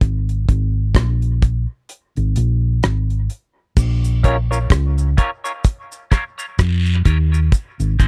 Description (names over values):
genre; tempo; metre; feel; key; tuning
dub reggae; 64 BPM; 4/4; swing 58% on 16ths; Bb minor; A4 = 441 Hz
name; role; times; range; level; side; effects
hollow-body short-scale fingered electric bass; bass; 0.0-8.1 s; Ab1 to F2; -19 LUFS; equal; none
damped 70s drum kit; drums; 0.0-8.1 s; crash cymbal, hi-hat, kick drum, rim click; -17 LUFS; equal; none
cabasa and guiro; percussion; 3.8-8.1 s; none; -36 LUFS; equal; high-pass filter on perc, dub echo
semi-hollow electric guitar; accompaniment; 4.2-8.1 s; C4 to Db5; -27 LUFS; equal; high-pass filter, dub echo
room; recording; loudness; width
little or no reverb; dry, close 1970s-style studio recording; -18 LUFS; mono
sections
0.0-3.8 A section; 3.8-8.1 B section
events
break 0.0-3.8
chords
0.0 Absus2; 3.8 Bbm; 7.5 Ab